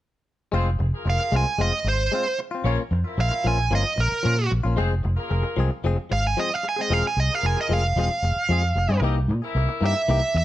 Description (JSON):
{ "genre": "blues", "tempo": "113 BPM", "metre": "4/4", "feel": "straight", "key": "F harmonic minor", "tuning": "A4 = 440 Hz", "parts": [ { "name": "brilliant horn section", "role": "sustained chords", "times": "0.5-10.0 s", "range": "Bb3 to E5", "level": "-32 LUFS", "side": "left 2 dB", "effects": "none" }, { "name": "direct-recorded clean electric guitar", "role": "stabs", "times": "0.5-10.4 s", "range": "E3 to Ab4", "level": "-29 LUFS", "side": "left 5 dB", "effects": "digital delay" }, { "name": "vintage muted fingered electric bass", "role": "bass", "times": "0.5-10.4 s", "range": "E1 to Bb2", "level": "-22 LUFS", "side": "equal", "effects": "none" }, { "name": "smooth overdriven lead guitar", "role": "melody", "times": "1.1-10.4 s", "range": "Bb4 to Ab5", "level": "-24 LUFS", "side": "right 3 dB", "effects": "none" } ], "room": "light reverb", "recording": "none", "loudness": "-20 LUFS", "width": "side -14 dB against mid", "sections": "0.5-10.4 A section", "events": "none", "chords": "0.5 Fm; 2.6 Bbm; 4.8 Fm; 9.0 C7#9", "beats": "| 0.52 1.05 1.59 2.12 | 2.65 3.18 3.71 4.24 | 4.77 5.30 5.83 6.37 | 6.90 7.43 7.96 8.49 | 9.02 9.55 10.08" }